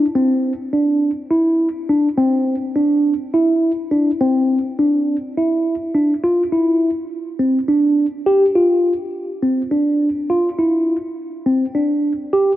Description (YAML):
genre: progressive instrumental, progressive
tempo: 207 BPM (eighths)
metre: 7/8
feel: straight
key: D minor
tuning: A4 = 439 Hz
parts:
  - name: mellow tine electric piano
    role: solo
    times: 0.0-12.5 s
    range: C4 to G4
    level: -15 LUFS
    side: equal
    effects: phaser, cassette tape
room: wet lush hall reverb, RT60 2.9 s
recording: home recording on cassette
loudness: -15 LUFS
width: side -14 dB against mid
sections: 0.0-6.2 A section; 6.2-12.6 B section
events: none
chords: none